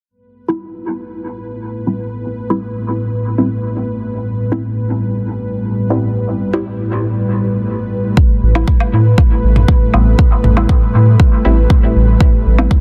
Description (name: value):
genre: dub techno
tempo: 119 BPM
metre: 4/4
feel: straight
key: A minor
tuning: A4 = 440 Hz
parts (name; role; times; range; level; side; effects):
- dark analog pad; sustained chords; 1.0-12.8 s; A2 to B4; -20 LUFS; equal; chorus, sidechain pumping
- filtered dub chord stab; stabs; 0.5-12.8 s; G3 to E4; -24 LUFS; equal; phaser, sidechain pumping, dub echo
- electronic kick drum; drums; 8.2-12.8 s; none; -12 LUFS; equal; none
- soft dub sub bass; bass; 8.4-12.7 s; A1 to A2; -13 LUFS; equal; sidechain pumping
- electronic woodblock and toms; percussion; 8.6-12.7 s; none; -22 LUFS; equal; sidechain pumping on perc, sidechain pumping on toms, dub echo
room: little or no reverb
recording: dense, heavily limited modern master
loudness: -14 LUFS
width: mono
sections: 0.1-12.8 A section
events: filter sweep on synth stab 0.1-12.8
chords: 0.1 Am9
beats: | 0.10 0.61 1.11 1.62 | 2.12 2.63 3.13 3.63 | 4.14 4.64 5.15 5.65 | 6.16 6.66 7.16 7.67 | 8.17 8.68 9.18 9.68 | 10.19 10.69 11.20 11.70 | 12.21 12.71